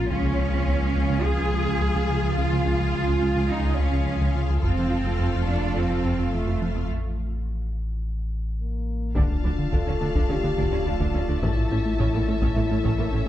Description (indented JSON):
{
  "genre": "cinematic, hybrid orchestral and electronic film score",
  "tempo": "106 BPM",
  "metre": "4/4",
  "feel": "straight",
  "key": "D harmonic minor from 9.2 s",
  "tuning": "A4 = 440 Hz",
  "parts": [
    { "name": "warm symphonic violin section", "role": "second line", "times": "0.0-13.3 s", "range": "G#4 to E#5", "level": "-35 LUFS", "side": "left 4 dB", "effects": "none" },
    { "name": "rich studio viola section", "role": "accompaniment", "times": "0.0-13.2 s", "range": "Bb3 to E#4", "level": "-36 LUFS", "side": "right 2 dB", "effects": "none" },
    { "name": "evolving wavetable pad", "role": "sustained chords", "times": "0.0-13.3 s", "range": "E#3 to E#5", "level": "-33 LUFS", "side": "left 3 dB", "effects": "chorus, built-in reverb" },
    { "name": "thumb-piano-like synth pluck", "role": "arpeggios", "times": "0.0-13.2 s", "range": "C#3 to A4", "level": "-35 LUFS", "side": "right 2 dB", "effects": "none" },
    { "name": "rubbery square bass", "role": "riff", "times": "0.0-13.2 s", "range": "C#2 to A3", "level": "-28 LUFS", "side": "right 1 dB", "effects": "none" },
    { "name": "rich symphonic cello section", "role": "bass", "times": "0.0-13.2 s", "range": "A2 to G#4", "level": "-29 LUFS", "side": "right 2 dB", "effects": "none" },
    { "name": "rich symphonic double bass section", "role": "bass", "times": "0.0-13.2 s", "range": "A1 to F2", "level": "-30 LUFS", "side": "right 3 dB", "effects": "none" },
    { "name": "warm sub bass", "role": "bass", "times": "0.0-13.3 s", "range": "D1 to C#2", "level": "-28 LUFS", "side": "left 1 dB", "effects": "none" },
    { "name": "taiko ensemble", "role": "drums", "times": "0.1-1.2, 4.6-5.7, 9.2-13.3 s", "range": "none", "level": "-28 LUFS", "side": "equal", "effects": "none" },
    { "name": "mellow French horn section", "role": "sustained chords", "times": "8.6-13.3 s", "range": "Bb3 to A4", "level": "-30 LUFS", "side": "left 4 dB", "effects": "none" },
    { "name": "warm symphonic violin section", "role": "melody", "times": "9.2-13.3 s", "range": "A5", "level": "-38 LUFS", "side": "left 6 dB", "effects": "none" }
  ],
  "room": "light reverb",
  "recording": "dark, warm production",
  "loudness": "-22 LUFS",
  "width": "side -12 dB against mid",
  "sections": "0.0-9.2 A section; 9.2-13.3 B section",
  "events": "break 6.9-9.2; drum fill 8.6-9.2",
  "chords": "0.1 C#; 4.6 F; 6.9 N.C.; 9.2 Dm; 11.4 A"
}